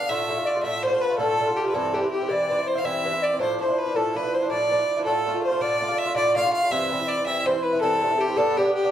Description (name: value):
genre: celtic folk, Celtic slip jig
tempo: 109 BPM (dotted quarters)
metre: 9/8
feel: straight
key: D dorian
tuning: A4 = 440 Hz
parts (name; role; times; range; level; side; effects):
- clear fiddle; melody; 0.0-8.9 s; G4 to F5; -24 LUFS; equal; none
- bright baroque flute; second line; 0.0-8.9 s; G4 to F5; -26 LUFS; left 2 dB; none
- Irish bouzouki; accompaniment; 0.0-8.9 s; G2 to F4; -26 LUFS; right 2 dB; none
room: wet studio reverb, RT60 0.6 s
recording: heard from further back in the room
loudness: -21 LUFS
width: side -10 dB against mid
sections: 0.0-5.1 A section; 5.1-8.9 A section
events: none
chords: 0.1 Dm; 1.7 C; 3.4 Dmadd9; 5.1 Dm; 6.7 C; 8.4 G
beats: | 0.08 0.64 1.19 | 1.74 2.29 2.85 | 3.40 3.95 4.50 | 5.06 5.61 6.16 | 6.71 7.26 7.82 | 8.37